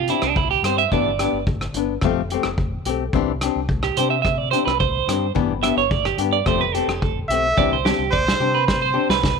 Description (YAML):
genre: highlife guitar band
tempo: 108 BPM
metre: 4/4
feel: straight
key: C major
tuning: A4 = 438 Hz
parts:
  - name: electric guitar at the edge of break-up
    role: arpeggios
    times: 0.0-9.4 s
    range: D4 to E5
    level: -21 LUFS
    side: right 14 dB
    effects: tremolo, slapback echo
  - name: deep dub fingered electric bass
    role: bass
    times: 0.0-9.4 s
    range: F1 to C3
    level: -28 LUFS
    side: equal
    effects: none
  - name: nylon-string guitar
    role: accompaniment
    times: 0.1-9.1 s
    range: E3 to G4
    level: -23 LUFS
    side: left 14 dB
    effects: none
  - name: vintage drum kit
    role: drums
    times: 0.1-9.4 s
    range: hi-hat, kick drum, rim click, snare drum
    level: -24 LUFS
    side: equal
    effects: none
  - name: warm trumpet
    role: melody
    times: 7.3-9.2 s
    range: C5 to E5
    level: -22 LUFS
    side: right 1 dB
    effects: none
room: light reverb, small room ambience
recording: 1960s-style stereo with parts hard left and right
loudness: -18 LUFS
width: side -5 dB against mid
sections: 0.0-7.6 A section; 7.6-9.4 B section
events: clean electric guitar solo 0.0-7.6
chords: 0.0 Cadd9; 0.9 G6; 2.0 Fadd9; 3.1 Cadd9; 5.4 G6; 6.5 Fadd9; 7.6 Csus2